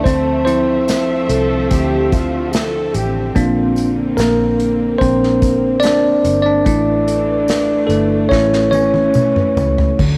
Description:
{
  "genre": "pop ballad",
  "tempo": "73 BPM",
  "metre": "4/4",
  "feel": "straight",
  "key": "D minor",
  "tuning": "A4 = 440 Hz",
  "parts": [
    { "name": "bell-like tine electric piano", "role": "accompaniment", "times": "0.0-10.2 s", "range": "D3 to D5", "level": "-17 LUFS", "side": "equal", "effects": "cassette tape" },
    { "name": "warm studio string section", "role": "sustained chords", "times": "0.0-10.2 s", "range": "D3 to E5", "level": "-28 LUFS", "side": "equal", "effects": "cassette tape" },
    { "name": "vintage muted fingered electric bass", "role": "bass", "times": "0.1-10.2 s", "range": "G1 to D2", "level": "-24 LUFS", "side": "equal", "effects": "none" },
    { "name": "unplugged drum kit", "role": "drums", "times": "0.1-10.2 s", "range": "crash cymbal, hi-hat, kick drum, snare drum, toms", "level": "-22 LUFS", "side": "equal", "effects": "cassette tape" },
    { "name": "tambourine", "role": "percussion", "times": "0.1-9.8 s", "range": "none", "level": "-42 LUFS", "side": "equal", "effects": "none" },
    { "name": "clear French horn section", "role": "second line", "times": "1.3-4.0 s", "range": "F4 to A4", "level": "-23 LUFS", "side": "equal", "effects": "cassette tape" }
  ],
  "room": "light reverb, small room ambience",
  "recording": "home recording on cassette",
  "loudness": "-15 LUFS",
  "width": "mono",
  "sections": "0.0-10.0 A section",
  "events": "tine electric piano solo 0.0-10.0; drum fill 8.3-10.0",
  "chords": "0.1 Dm7; 3.4 Bbadd9; 6.7 Asus4; 8.3 A",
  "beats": "| 0.05 0.88 1.71 2.53 | 3.35 4.18 5.00 5.83 | 6.66 7.49 8.31 9.15 | 9.99"
}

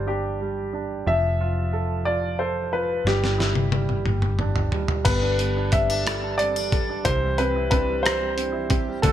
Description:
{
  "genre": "six-eight pop ballad",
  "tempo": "60 BPM (dotted quarters)",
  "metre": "6/8",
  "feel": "straight",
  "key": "C major",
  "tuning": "A4 = 442 Hz",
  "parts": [
    { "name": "clear grand piano", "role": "melody", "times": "0.0-9.1 s", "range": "G4 to E5", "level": "-26 LUFS", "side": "left 1 dB", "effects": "none" },
    { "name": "clear upright piano", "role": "accompaniment", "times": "0.0-9.1 s", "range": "C3 to A4", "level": "-29 LUFS", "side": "right 5 dB", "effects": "none" },
    { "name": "vintage muted fingered electric bass", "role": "bass", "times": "0.0-9.1 s", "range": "F1 to D2", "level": "-27 LUFS", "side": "equal", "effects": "none" },
    { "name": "dusty soul sampler-style drum kit", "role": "drums", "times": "3.1-9.1 s", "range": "crash cymbal, hi-hat, kick drum, rim click, snare drum, toms", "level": "-24 LUFS", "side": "left 1 dB", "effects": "gated reverb" },
    { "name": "fingerpicked plugged-in steel-string acoustic guitar", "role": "arpeggios", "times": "5.1-9.1 s", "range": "E3 to A4", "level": "-31 LUFS", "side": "left 4 dB", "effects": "analog chorus" }
  ],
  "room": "light reverb",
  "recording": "bright 1980s-style digital production",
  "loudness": "-21 LUFS",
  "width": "side -11 dB against mid",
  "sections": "0.0-5.1 A section; 5.1-9.1 B section",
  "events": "drum fill 3.1-5.1",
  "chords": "0.0 G5; 1.1 Fmaj7; 3.1 Em/G; 4.1 G5; 5.1 Gadd9; 7.1 Cadd9",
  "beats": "0.07 | 1.07 2.06 | 3.05 4.05 | 5.06 6.06 | 7.05 8.04 | 9.03"
}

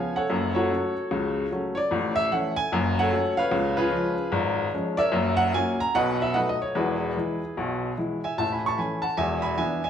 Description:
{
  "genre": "jazz, stride piano",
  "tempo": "149 BPM",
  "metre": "4/4",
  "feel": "swing 63% on 8ths",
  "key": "A major",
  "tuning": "A4 = 439 Hz",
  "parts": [
    { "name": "clear upright piano", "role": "solo", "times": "0.0-9.9 s", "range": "E1 to C#6", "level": "-23 LUFS", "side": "equal", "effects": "none" }
  ],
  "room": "wet large studio reverb, RT60 1.4 s",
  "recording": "band playing live in one room, faint mains hum",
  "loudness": "-23 LUFS",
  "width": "side -8 dB against mid",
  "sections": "0.0-8.4 A section; 8.4-9.9 B section",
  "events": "none",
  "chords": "0.3 F#m; 1.9 A; 2.7 F#m; 3.5 C#7; 5.1 F#; 5.9 B7; 6.7 E; 8.4 A; 9.2 E7",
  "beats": "| 0.29 0.69 1.10 1.50 | 1.90 2.30 2.71 3.11 | 3.51 3.92 4.32 4.72 | 5.13 5.53 5.93 6.34 | 6.74 7.15 7.55 7.96 | 8.36 8.77 9.17 9.57"
}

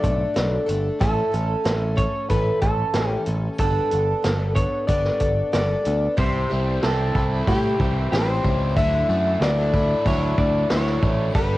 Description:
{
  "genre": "folk rock and heartland rock",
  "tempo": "93 BPM",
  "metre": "4/4",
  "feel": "straight",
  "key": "D major",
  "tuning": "A4 = 440 Hz",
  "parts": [
    { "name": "electric guitar through a small old amp", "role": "melody", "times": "0.0-11.6 s", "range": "G4 to E5", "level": "-24 LUFS", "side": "equal", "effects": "harmonic tremolo, cassette tape, analog delay" },
    { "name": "picked plugged-in twelve-string acoustic guitar", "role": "accompaniment", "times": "0.0-11.6 s", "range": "A2 to A4", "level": "-27 LUFS", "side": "left 2 dB", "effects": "cassette tape" },
    { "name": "picked electric bass", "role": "bass", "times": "0.0-11.6 s", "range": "G1 to A2", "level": "-23 LUFS", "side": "equal", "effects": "none" },
    { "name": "vintage drum kit", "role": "drums", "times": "0.0-11.5 s", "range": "hi-hat, kick drum, snare drum", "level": "-25 LUFS", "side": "equal", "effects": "cassette tape" },
    { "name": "tonewheel organ", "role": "sustained chords", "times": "6.2-11.6 s", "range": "D4 to E6", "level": "-40 LUFS", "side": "right 1 dB", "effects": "none" },
    { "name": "biting overdriven guitar", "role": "riff", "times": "6.2-11.6 s", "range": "C3 to E4", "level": "-30 LUFS", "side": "right 1 dB", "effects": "cassette tape" }
  ],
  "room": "small room ambience",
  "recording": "home recording on cassette",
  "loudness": "-19 LUFS",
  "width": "side -17 dB against mid",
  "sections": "0.0-6.2 A section; 6.2-11.6 B section",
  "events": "none",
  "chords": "0.0 Bm7; 1.0 A; 3.6 Gadd9; 6.2 C; 8.8 Dadd9",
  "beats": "0.36 | 1.01 1.66 2.30 2.95 | 3.60 4.24 4.89 5.54 | 6.18 6.83 7.48 8.12 | 8.77 9.41 10.06 10.71 | 11.35"
}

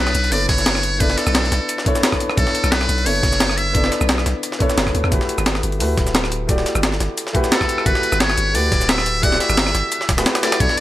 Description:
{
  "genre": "liquid drum and bass",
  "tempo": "175 BPM",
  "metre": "4/4",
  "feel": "swing 53% on 16ths",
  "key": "unclear",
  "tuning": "A4 = 445 Hz",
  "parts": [
    { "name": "trumpet with metal mute", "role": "melody", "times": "0.0-3.9, 7.5-10.8 s", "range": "A4 to F#5", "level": "-21 LUFS", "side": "equal", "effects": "dub echo" },
    { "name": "dark grand piano", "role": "accompaniment", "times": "0.0-10.8 s", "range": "A3 to D5", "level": "-23 LUFS", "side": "left 1 dB", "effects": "dub echo" },
    { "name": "long sustained 808-style bass", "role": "bass", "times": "0.0-10.7 s", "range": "D1 to E2", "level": "-22 LUFS", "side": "equal", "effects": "none" },
    { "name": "sub drop", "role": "sound effects", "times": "0.0-1.0 s", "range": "none", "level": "barely audible", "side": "none", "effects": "none" },
    { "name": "breakbeat sampler-style drum kit", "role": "drums", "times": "0.1-10.8 s", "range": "hi-hat, rim click, shaker, snare drum", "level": "-22 LUFS", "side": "equal", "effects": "none" },
    { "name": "jungle sampler-style drum kit", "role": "drums", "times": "0.1-10.8 s", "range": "hi-hat, snare drum", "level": "-25 LUFS", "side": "equal", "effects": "high-pass filter on hats, high-pass filter on snare" },
    { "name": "electronic kick drum", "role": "drums", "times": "0.5-10.7 s", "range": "none", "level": "-20 LUFS", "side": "equal", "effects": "none" }
  ],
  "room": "light reverb",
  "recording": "none",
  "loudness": "-15 LUFS",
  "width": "side -14 dB against mid",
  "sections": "0.0-10.8 A section",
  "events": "impact 0.0-1.0",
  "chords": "0.0 Bm11; 5.1 Gmaj13",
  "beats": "0.32 0.66 | 1.00 1.35 1.69 2.03 | 2.38 2.72 3.06 3.40 | 3.75 4.09 4.43 4.78 | 5.12 5.46 5.80 6.15 | 6.49 6.83 7.17 7.52 | 7.86 8.20 8.55 8.89 | 9.23 9.57 9.92 10.26 | 10.60"
}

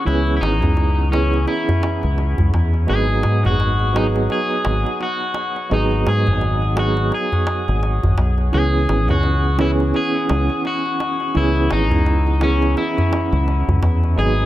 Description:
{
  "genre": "trip hop",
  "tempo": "85 BPM",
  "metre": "4/4",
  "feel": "swing 58% on 16ths",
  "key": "C# minor",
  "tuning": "A4 = 438 Hz",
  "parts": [
    { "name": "electric guitar at the edge of break-up", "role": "melody", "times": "0.0-14.5 s", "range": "C#4 to G#4", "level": "-23 LUFS", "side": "left 2 dB", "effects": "vintage 12-bit sampler grit, dub echo" },
    { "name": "felt-muted upright piano", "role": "accompaniment", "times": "0.0-14.5 s", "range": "E3 to G#4", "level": "-22 LUFS", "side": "right 2 dB", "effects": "tremolo, low-pass filter, tape echo" },
    { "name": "deep dub fingered electric bass", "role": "bass", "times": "0.1-14.5 s", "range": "G#1 to G#2", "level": "-18 LUFS", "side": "equal", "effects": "none" },
    { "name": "darbuka", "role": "percussion", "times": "0.1-14.5 s", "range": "none", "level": "-23 LUFS", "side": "equal", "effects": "none" }
  ],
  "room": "studio ambience",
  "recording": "echo-heavy mix",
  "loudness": "-16 LUFS",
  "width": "side -14 dB against mid",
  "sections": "0.0-14.5 A section",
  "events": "none",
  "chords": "0.0 C#m7; 2.9 G#m7; 8.5 C#m7",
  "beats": "| 0.06 0.77 1.47 2.18 | 2.89 3.59 4.30 5.00 | 5.71 6.42 7.12 7.83 | 8.53 9.24 9.94 10.65 | 11.36 12.06 12.77 13.47 | 14.18"
}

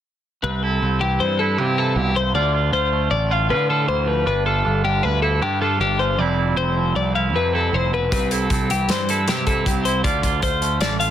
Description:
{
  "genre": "math rock and midwest emo",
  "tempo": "156 BPM",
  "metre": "5/4",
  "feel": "straight",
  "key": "C major",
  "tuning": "A4 = 435 Hz",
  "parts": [
    { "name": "twangy electric guitar", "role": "accompaniment", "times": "0.4-11.1 s", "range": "F2 to F4", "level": "-23 LUFS", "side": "right 8 dB", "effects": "spring reverb" },
    { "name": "twelve-string electric guitar", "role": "arpeggios", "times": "0.4-11.1 s", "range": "G4 to F5", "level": "-22 LUFS", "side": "left 6 dB", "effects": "none" },
    { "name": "fuzz picked electric bass", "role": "bass", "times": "0.4-11.1 s", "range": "F1 to D3", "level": "-22 LUFS", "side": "equal", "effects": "overdrive" },
    { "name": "loose indie drum kit", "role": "drums", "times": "8.1-11.1 s", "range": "hi-hat, kick drum, snare drum", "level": "-23 LUFS", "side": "equal", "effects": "none" }
  ],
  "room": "light reverb",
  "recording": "dense, heavily limited modern master",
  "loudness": "-17 LUFS",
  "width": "side -10 dB against mid",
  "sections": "0.4-11.1 A section",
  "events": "none",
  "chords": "0.4 Cmaj7; 2.4 Dm7; 4.3 G7; 6.2 Fmaj9; 8.1 C; 10.0 Dm7",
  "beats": "| 0.44 0.82 1.21 1.59 1.97 | 2.35 2.73 3.12 3.50 3.88 | 4.27 4.65 5.04 5.42 5.80 | 6.19 6.57 6.96 7.34 7.73 | 8.11 8.50 8.88 9.27 9.66 | 10.04 10.43 10.81"
}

